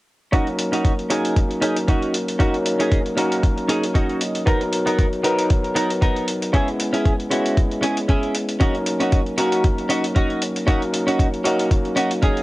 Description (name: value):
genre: nu-disco, nu disco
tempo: 116 BPM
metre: 4/4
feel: swing 55% on 16ths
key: Eb phrygian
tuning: A4 = 442 Hz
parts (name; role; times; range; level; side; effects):
- overdriven tine electric piano; accompaniment; 0.3-12.4 s; Gb3 to Bb4; -22 LUFS; equal; sidechain pumping, low-pass filter, cassette tape, tape echo
- direct-recorded clean electric guitar; riff; 0.3-12.4 s; B3 to Eb5; -23 LUFS; right 1 dB; lush chorus, low-pass filter, cassette tape, tape echo
- electronic hi-hat; drums; 0.3-12.4 s; none; -29 LUFS; left 1 dB; none
- electronic kick drum; drums; 0.3-12.3 s; none; -18 LUFS; equal; none
room: light reverb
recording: home recording on cassette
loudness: -18 LUFS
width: side -19 dB against mid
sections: 0.3-12.4 A section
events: clean electric guitar fill 3.7-4.5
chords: 0.3 Ebm7; 4.5 Bmaj7; 6.5 E6; 8.6 Ebm7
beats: | 0.33 0.85 1.37 1.88 | 2.40 2.92 3.44 3.95 | 4.47 4.99 5.50 6.02 | 6.54 7.06 7.57 8.09 | 8.61 9.12 9.64 10.16 | 10.68 11.19 11.71 12.23